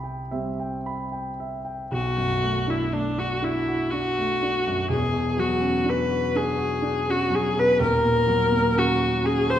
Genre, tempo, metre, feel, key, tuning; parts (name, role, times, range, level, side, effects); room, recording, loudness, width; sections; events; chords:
classical, impressionist duo for viola and grand piano; 36-42 BPM (dotted quarters); 6/8; rubato; A4 = 440 Hz
dark concert grand piano; accompaniment; 0.0-9.6 s; D#1 to B5; -25 LUFS; right 1 dB
warm viola; melody; 1.9-9.6 s; D4 to C5; -22 LUFS; left 2 dB
wet recital hall reverb, RT60 1.5 s; minimal, uncompressed stereo recording; -21 LUFS; side -10 dB against mid
0.0-1.9 A section; 1.9-9.6 B section
0.0 Cmaj7; 1.9 Bm7; 4.9 Esus2; 7.8 D#m7